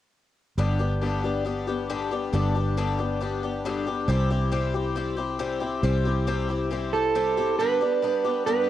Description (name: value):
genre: rock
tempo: 137 BPM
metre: 4/4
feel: straight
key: G major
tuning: A4 = 440 Hz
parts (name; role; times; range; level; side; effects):
- picked twelve-string acoustic guitar; accompaniment; 0.6-8.7 s; G2 to G4; -27 LUFS; left 5 dB; cassette tape
- fingered electric bass; bass; 0.6-7.5 s; G1 to C2; -27 LUFS; right 1 dB; none
- electric slide guitar; melody; 6.9-8.7 s; A4 to B4; -22 LUFS; right 6 dB; cassette tape
room: light reverb, small room ambience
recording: home recording on cassette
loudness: -23 LUFS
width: side -12 dB against mid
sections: 0.6-7.6 A section; 7.6-8.7 B section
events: none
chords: 0.6 G; 4.1 C; 7.6 G